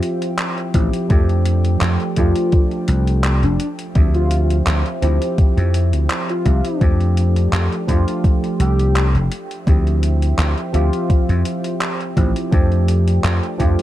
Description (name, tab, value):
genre	vaporwave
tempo	84 BPM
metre	4/4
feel	swing 54% on 16ths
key	unclear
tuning	A4 = 441 Hz
part	warm velvety synth lead	melody	0.0-13.8 s	D4 to G4	-27 LUFS	left 1 dB	chorus, tape echo
part	tine electric piano	accompaniment	0.0-13.8 s	F3 to E5	-23 LUFS	equal	analog chorus, tape echo
part	warbly tape-like pad	sustained chords	0.0-13.8 s	F3 to G5	-30 LUFS	right 3 dB	chorus, built-in reverb
part	gated 80s digital drum machine	drums	0.0-13.8 s	handclaps, hi-hat	-26 LUFS	equal	gated reverb, overdrive
part	vintage slap bass	bass	0.7-13.7 s	F1 to F2	-16 LUFS	equal	none
part	electronic kick drum	drums	0.7-13.8 s	none	-15 LUFS	equal	overdrive
room	digital ambience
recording	dark, warm production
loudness	-15 LUFS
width	side -14 dB against mid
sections	0.0-13.8 A section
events	none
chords	0.0 Dm11 (rootless); 1.1 F69; 3.6 Dm11; 6.8 F69; 9.3 Dm11; 12.5 F69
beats	0.38 | 1.10 1.81 2.53 3.24 | 3.96 4.67 5.38 6.10 | 6.81 7.53 8.24 8.96 | 9.67 10.38 11.10 11.81 | 12.53 13.24